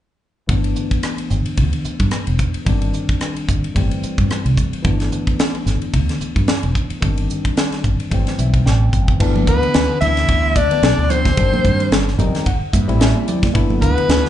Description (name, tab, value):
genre	electric jazz fusion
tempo	110 BPM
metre	4/4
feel	swing 56% on 16ths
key	G major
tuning	A4 = 440 Hz
part	barky tine electric piano	accompaniment	0.5-14.3 s	Eb3 to G5	-23 LUFS	left 3 dB	analog chorus, slapback echo
part	mellow fretless electric bass	bass	0.5-14.2 s	E1 to G2	-18 LUFS	equal	lush chorus
part	crisp fusion drum kit	drums	0.5-14.3 s	crash cymbal, hi-hat, kick drum, ride cymbal, rim click, snare drum	-20 LUFS	equal	none
part	congas	percussion	9.4-13.8 s	none	-24 LUFS	right 7 dB	none
part	clear soprano saxophone	melody	9.5-14.3 s	B4 to E5	-19 LUFS	equal	slapback echo, plate reverb
part	clear tenor saxophone	second line	9.5-14.3 s	B3 to E4	-24 LUFS	left 6 dB	plate reverb, slapback echo
room	light reverb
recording	live gig heard through the venue's PA, club reverb, nothing above 10.3 kHz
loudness	-15 LUFS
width	side -12 dB against mid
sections	0.5-9.2 A section; 9.2-14.3 B section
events	tine electric piano fill 8.1-9.2, 11.9-13.5; drum fill 8.7-9.2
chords	0.5 G69; 2.7 Cmadd9/G; 3.8 Am7/G; 4.8 G69; 7.0 Cmadd9/G; 8.1 Am9/G; 9.2 G69; 11.4 Cmadd9/G; 12.5 C69/G; 13.5 G69